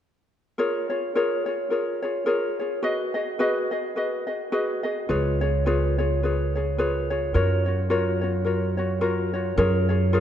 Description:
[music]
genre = Hawaiian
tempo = 107 BPM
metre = 4/4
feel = swing 57% on 8ths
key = F# major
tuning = A4 = 442 Hz
[part]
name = ukulele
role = accompaniment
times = 0.6-10.2 s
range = E#4 to D#5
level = -24 LUFS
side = left 1 dB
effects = none
[part]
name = upright bass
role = bass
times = 5.1-10.2 s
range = C#2 to F#2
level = -24 LUFS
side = right 1 dB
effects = none
[sound]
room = moderate concert hall reverb, RT60 2.4 s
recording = dark, warm production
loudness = -22 LUFS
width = side -10 dB against mid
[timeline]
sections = 0.6-9.6 A section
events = none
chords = 0.6 A#m7/E#; 2.8 G#m7; 5.1 C#7; 7.3 F#maj7; 9.6 F#maj9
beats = | 0.58 1.14 1.71 2.27 | 2.83 3.39 3.96 4.52 | 5.08 5.65 6.21 6.77 | 7.33 7.90 8.46 9.02 | 9.59 10.15

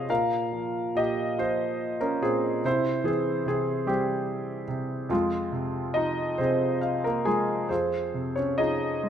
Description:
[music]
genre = classical, lyrical solo piano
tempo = 47 BPM (dotted quarters)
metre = 6/8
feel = uneven beats, rubato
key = F minor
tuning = A4 = 440 Hz
[part]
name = warm concert grand piano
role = solo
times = 0.0-9.1 s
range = F2 to Ab5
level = -25 LUFS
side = equal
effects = none
[sound]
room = moderate scoring stage reverb, RT60 1.7 s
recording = none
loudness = -25 LUFS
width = side -9 dB against mid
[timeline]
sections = 0.0-7.7 A section; 7.7-9.1 B section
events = grand piano fill 6.4-7.7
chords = 0.1 Bbm; 2.6 C; 5.1 Fm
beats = | 0.10 1.38 | 2.63 3.87 | 5.10 6.37 | 7.70 9.04

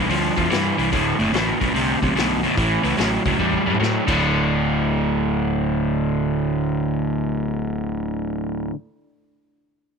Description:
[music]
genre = blues rock power trio and southern rock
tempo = 146 BPM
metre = 4/4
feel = swing 66% on 8ths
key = D mixolydian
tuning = A4 = 440 Hz
[part]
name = crunchy overdriven guitar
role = riff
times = 0.0-8.8 s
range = D2 to G3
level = -20 LUFS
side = equal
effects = none
[part]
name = fuzz fingered electric bass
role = bass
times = 0.0-8.7 s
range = D1 to A2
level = -26 LUFS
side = equal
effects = overdrive
[part]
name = vintage drum kit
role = drums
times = 0.1-4.1 s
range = crash cymbal, hi-hat, kick drum, snare drum, toms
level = -28 LUFS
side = left 3 dB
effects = none
[sound]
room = small room reverb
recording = 1960s-style stereo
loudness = -18 LUFS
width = side -6 dB against mid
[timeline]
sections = 0.0-4.2 A section; 4.2-7.5 B section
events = drum fill 3.4-4.2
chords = 0.0 G5; 0.9 D5; 2.6 A; 4.0 D5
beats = 0.10 0.51 | 0.92 1.33 1.75 2.16 | 2.57 2.98 3.39 3.80 | 4.21 4.62 5.03 5.44 | 5.85 6.26 6.67 7.08

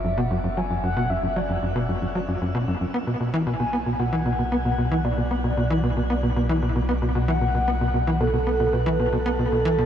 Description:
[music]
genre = ambient, sequencer-driven space music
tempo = 114 BPM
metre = 4/4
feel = straight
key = unclear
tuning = A4 = 440 Hz
[part]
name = mellow horn-like synth lead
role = melody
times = 0.0-9.9 s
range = A4 to G#5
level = -27 LUFS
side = right 1 dB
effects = lush chorus, tape echo
[part]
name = tight sequencer bass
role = riff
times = 0.0-9.9 s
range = F#2 to B3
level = -23 LUFS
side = equal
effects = lush chorus, tape echo
[part]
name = warm sub bass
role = bass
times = 0.0-9.9 s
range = F#1 to B1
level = -28 LUFS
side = equal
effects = none
[sound]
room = moderate shimmer reverb, RT60 7.8 s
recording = none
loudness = -21 LUFS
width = side -9 dB against mid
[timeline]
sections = 0.0-9.9 A section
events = filter sweep on analog synth bass 0.0-9.9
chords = 0.0 F#5; 2.9 Bm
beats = 0.31 | 0.84 1.36 1.89 2.42 | 2.94 3.47 3.99 4.52 | 5.05 5.57 6.10 6.63 | 7.15 7.68 8.21 8.73 | 9.26 9.78

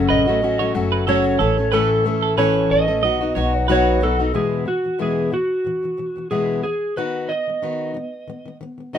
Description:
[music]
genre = acoustic pop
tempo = 92 BPM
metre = 4/4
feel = swing 55% on 16ths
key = E major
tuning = A4 = 439 Hz
[part]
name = electric slide guitar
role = melody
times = 0.0-9.0 s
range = F#4 to D#5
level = -21 LUFS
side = right 3 dB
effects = none
[part]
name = fingerpicked plugged-in steel-string acoustic guitar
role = accompaniment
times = 0.0-9.0 s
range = E2 to A4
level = -21 LUFS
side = left 4 dB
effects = none
[part]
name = upright bass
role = bass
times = 0.0-4.3 s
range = F#1 to B1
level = -24 LUFS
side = right 1 dB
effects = none
[part]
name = twelve-string electric guitar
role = arpeggios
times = 0.1-4.2 s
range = A4 to D#5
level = -25 LUFS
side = right 9 dB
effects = none
[sound]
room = moderate studio ambience, RT60 0.5 s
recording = minimal, uncompressed stereo recording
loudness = -17 LUFS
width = side -9 dB against mid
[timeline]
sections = 0.0-4.3 A section; 4.3-9.0 B section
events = none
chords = 0.0 F#m; 1.4 A; 3.0 B; 4.3 E; 7.0 B/D#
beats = 0.42 1.07 | 1.73 2.38 3.03 3.69 | 4.34 5.00 5.65 6.31 | 6.96 7.62 8.28 8.94

